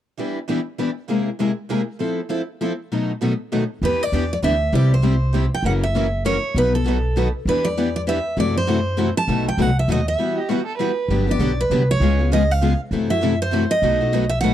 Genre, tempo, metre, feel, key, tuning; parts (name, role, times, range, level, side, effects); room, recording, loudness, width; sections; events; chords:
acoustic string swing (jazz manouche); 198 BPM; 3/4; swing 59% on 8ths; E minor from 3.8 s; A4 = 440 Hz
picked steel-string acoustic guitar; accompaniment; 0.2-14.5 s; B2 to Bb4; -23 LUFS; left 6 dB
picked steel-string acoustic guitar; accompaniment; 0.2-14.5 s; B2 to B4; -27 LUFS; right 9 dB
picked steel-string acoustic guitar; melody; 3.8-14.5 s; A4 to A5; -22 LUFS; right 2 dB
upright bass; bass; 3.8-14.5 s; F#1 to F#2; -21 LUFS; equal
dark violin; second line; 10.4-11.1 s; F#4 to B4; -26 LUFS; right 6 dB
small room ambience; dry, close 1970s-style studio recording; -18 LUFS; side -11 dB against mid
0.2-3.8 A section; 3.8-11.1 B section; 11.1-14.5 C section
break 10.2-11.1
0.2 Em7; 1.1 Caug7; 2.0 Fmaj7; 2.9 B7; 3.8 Em7; 4.7 C; 5.6 F#7; 6.5 B; 7.5 Em7; 8.4 F#m7b5; 9.3 B7; 10.2 Emadd9; 11.1 Gmaj7; 12.0 C#7; 12.9 F#m7b5; 13.8 B7